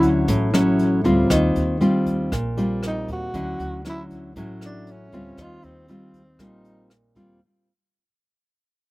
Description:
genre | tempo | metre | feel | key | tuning
bossa nova | 118 BPM | 4/4 | straight | unclear | A4 = 440 Hz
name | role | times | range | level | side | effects
growling tenor saxophone | melody | 0.0-6.9 s | C4 to F#4 | -28 LUFS | right 1 dB | slapback echo
nylon-string guitar | accompaniment | 0.0-7.4 s | A2 to F4 | -20 LUFS | equal | slapback echo
upright bass | bass | 0.0-7.4 s | A1 to Eb2 | -29 LUFS | equal | none
jazz brush drum kit | drums | 0.0-7.3 s | hi-hat, kick drum, rim click | -30 LUFS | equal | none
room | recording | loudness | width
light reverb | recorded outdoors, with no room sound | -18 LUFS | side -20 dB against mid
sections
0.0-7.4 A section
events
fade-out 0.0-7.4; tenor saxophone solo 0.0-7.4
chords
0.0 Dmaj9; 1.3 Eb69; 3.3 Dmaj9; 5.4 Eb69

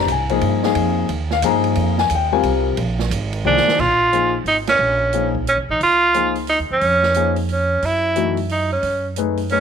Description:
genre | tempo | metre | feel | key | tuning
modal jazz | 178 BPM | 3/4 | swing 64% on 8ths | C minor | A4 = 441 Hz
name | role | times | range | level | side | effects
warm baby grand piano | accompaniment | 0.0-9.6 s | Eb3 to Bb5 | -20 LUFS | left 10 dB | none
upright bass | bass | 0.0-9.6 s | Ab1 to G2 | -23 LUFS | right 2 dB | none
open jazz drum kit | drums | 0.1-9.6 s | crash cymbal, hi-hat, kick drum, ride cymbal, snare drum | -29 LUFS | right 11 dB | none
clear tenor saxophone | melody | 3.5-9.6 s | Db4 to F4 | -16 LUFS | right 2 dB | none
room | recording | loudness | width
light reverb, small room ambience | 1960s-style stereo with parts hard left and right | -16 LUFS | side -7 dB against mid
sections
0.0-3.8 A section; 3.8-9.6 B section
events
drum fill 3.5-3.8; band accent 4.6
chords
0.0 C7sus4; 3.8 Bbm11; 7.8 Gbm11

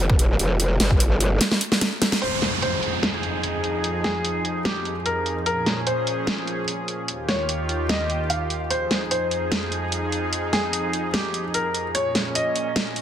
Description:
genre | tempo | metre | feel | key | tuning
heavy wobble dubstep | 148 BPM | 4/4 | half-time | F minor | A4 = 440 Hz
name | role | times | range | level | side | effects
growl bass | bass | 0.0-1.4 s | F1 to G1 | -20 LUFS | equal | chorus, overdrive
electronic kick drum | drums | 0.1-1.0 s | none | -19 LUFS | equal | none
dubstep drum kit | drums | 0.2-13.0 s | hi-hat, snare drum | -24 LUFS | equal | low-pass filter on hats, low-pass filter on snare
felt-muted upright piano | melody | 2.2-13.0 s | G4 to F5 | -27 LUFS | left 1 dB | dub echo
supersaw pad | sustained chords | 2.2-13.0 s | Eb2 to Ab4 | -27 LUFS | equal | sidechain pumping
downlifter | sound effects | 2.2-5.5 s | none | -28 LUFS | right 1 dB | none
room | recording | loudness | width
light reverb, digital ambience | dense, heavily limited modern master | -21 LUFS | side -10 dB against mid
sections
0.0-2.2 A section; 2.2-13.0 B section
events
drop 0.0-2.2; drum fill 1.4-2.2; band accent 2.1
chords
0.0 N.C.; 2.2 Fm7; 5.5 Bbm7; 7.1 Ebadd9; 8.7 Fm7; 11.9 Bbm7

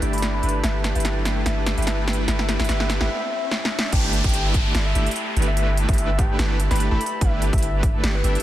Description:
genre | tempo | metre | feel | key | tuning
future bass | 146 BPM | 4/4 | swing 54% on 16ths, half-time | G major | A4 = 440 Hz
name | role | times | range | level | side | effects
concert harp | arpeggios | 0.0-8.4 s | E4 to A4 | -34 LUFS | left 1 dB | sidechain pumping, low-pass filter, dub echo
big bright polysynth | riff | 0.0-8.4 s | A3 to E5 | -28 LUFS | right 1 dB | sidechain pumping
long sustained 808-style bass | bass | 0.0-8.4 s | G1 | -22 LUFS | equal | sidechain pumping
big-room dance drum kit | drums | 0.0-8.4 s | crash cymbal, hi-hat, snare drum | -26 LUFS | equal | overdrive
riser and downlifter | sound effects | 0.8-7.2 s | none | -31 LUFS | equal | none
soft octave-layered synth lead | melody | 0.1-8.4 s | B4 to B5 | -30 LUFS | left 3 dB | chorus, sidechain pumping, tape echo
electronic kick drum | drums | 3.9-7.9 s | none | -21 LUFS | equal | none
room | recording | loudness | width
light reverb | dense, heavily limited modern master | -19 LUFS | side -13 dB against mid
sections
0.0-3.9 A section; 3.9-8.4 B section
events
build-up 0.0-3.9; drum fill 0.0-3.1, 3.5-3.9; filter sweep on analog polysynth 0.0-3.9; filter sweep on soft synth lead 0.0-3.9; filter sweep on harp 0.0-3.9; break 3.1-3.9; drop 3.9-8.4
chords
0.0 G69

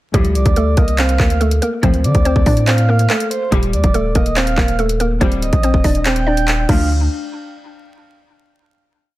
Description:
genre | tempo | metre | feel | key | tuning
hip hop, trap | 142 BPM | 4/4 | half-time | D phrygian | A4 = 440 Hz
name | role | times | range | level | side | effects
mallet-like synth pluck | melody | 0.1-6.9 s | G3 to D5 | -20 LUFS | equal | chorus, low-pass filter, ping-pong delay
warm studio string section | stabs | 0.1-6.9 s | D2 to G3 | -23 LUFS | left 4 dB | none
long sustained 808-style bass | bass | 0.1-7.1 s | D1 to D3 | -17 LUFS | equal | none
trap drum kit | drums | 0.1-6.8 s | crash cymbal, handclaps, hi-hat, kick drum | -17 LUFS | equal | none
breathy flute-like synth lead | second line | 0.3-6.9 s | C5 to G5 | -24 LUFS | right 3 dB | chorus, ping-pong delay
room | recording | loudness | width
little or no reverb | dense, heavily limited modern master, vinyl crackle | -13 LUFS | side -16 dB against mid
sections
0.1-6.9 hook; 6.9-8.6 final hit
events
none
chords
0.1 Dm; 3.5 Eb; 6.7 Dm; 6.9 N.C.

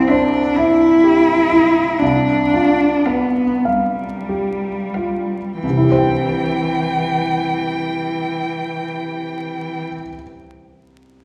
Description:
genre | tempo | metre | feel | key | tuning
classical, slow romantic movement for piano quartet | 29-46 BPM (dotted quarters) | 6/8 | rubato | C major | A4 = 440 Hz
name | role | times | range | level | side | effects
rich cello | second line | 0.0-9.9 s | E3 to E4 | -19 LUFS | equal | none
clear grand piano | accompaniment | 0.0-11.2 s | C2 to G5 | -22 LUFS | equal | none
warm violin | melody | 0.1-9.8 s | E5 to G5 | -28 LUFS | equal | none
room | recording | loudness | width
wet scoring stage reverb, RT60 1.7 s | heard from further back in the room, vinyl crackle | -17 LUFS | mono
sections
0.0-5.6 A section; 5.6-9.5 B section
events
slowing down 0.0-5.6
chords
0.0 C; 2.0 G7/C; 5.6 C

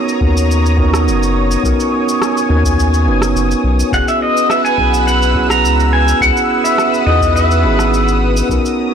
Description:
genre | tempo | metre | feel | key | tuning
sunset chillout | 105 BPM | 4/4 | straight | B major | A4 = 440 Hz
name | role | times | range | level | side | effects
mellow tine electric piano | accompaniment | 0.0-8.9 s | B3 to B4 | -17 LUFS | moving between left 3 dB and right 5 dB | auto-pan, vintage 12-bit sampler grit, tape echo
lush unison pad | sustained chords | 0.0-8.9 s | B4 to E6 | -19 LUFS | equal | chorus, phaser
electronic shaker and rim click | drums | 0.1-8.8 s | none | -23 LUFS | equal | studio ambience, soft clipping on snare
round analog bass | bass | 0.2-8.6 s | F#1 to E2 | -15 LUFS | equal | none
electronic kick drum | drums | 0.2-8.6 s | none | -20 LUFS | equal | overdrive, studio ambience
pedal steel guitar | melody | 3.9-8.2 s | D#5 to A#5 | -15 LUFS | equal | ping-pong delay
room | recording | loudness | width
light reverb | blown-out, overdriven recording, overdrive | -11 LUFS | side -7 dB against mid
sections
0.0-8.9 A section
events
none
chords
0.0 Bmaj9; 3.9 F#7sus4; 6.2 C#m11

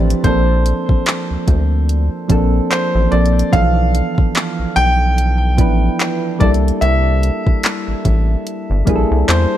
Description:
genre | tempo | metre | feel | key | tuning
contemporary R&B | 73 BPM | 4/4 | swing 58% on 16ths | unclear | A4 = 439 Hz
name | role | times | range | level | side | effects
soft electric-piano-like synth keys | accompaniment | 0.0-9.6 s | E3 to C5 | -19 LUFS | right 1 dB | chorus
rubbery square bass | bass | 0.0-9.5 s | G1 to E2 | -15 LUFS | equal | none
smooth R&B drum kit | drums | 0.1-9.5 s | handclaps, hi-hat, kick drum | -17 LUFS | equal | none
clear concert grand piano | melody | 0.2-9.6 s | C5 to G5 | -21 LUFS | equal | ping-pong delay
room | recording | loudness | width
little or no reverb | none | -13 LUFS | side -12 dB against mid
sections
0.0-9.6 A section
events
none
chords
0.2 Bbmaj9; 3.5 G13/B; 6.4 C13

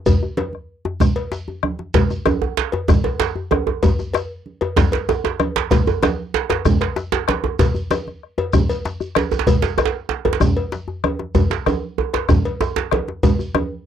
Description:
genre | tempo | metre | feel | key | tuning
west african traditional, West African drum ensemble | 128 BPM (dotted quarters) | 12/8 | straight | none | none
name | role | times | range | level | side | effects
bombo | percussion | 0.1-13.7 s | none | -20 LUFS | left 3 dB | none
congas | percussion | 0.1-13.7 s | none | -22 LUFS | right 4 dB | none
cowbell | percussion | 0.1-13.7 s | none | -25 LUFS | left 5 dB | none
djembe | percussion | 0.1-13.7 s | none | -23 LUFS | left 3 dB | none
shekere | percussion | 0.1-13.5 s | none | -29 LUFS | right 1 dB | none
djembe | percussion | 1.9-13.1 s | none | -21 LUFS | right 7 dB | none
room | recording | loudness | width
light reverb | dry, close 1970s-style studio recording | -17 LUFS | side -9 dB against mid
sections
0.0-1.9 A section; 1.9-13.9 B section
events
none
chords
none

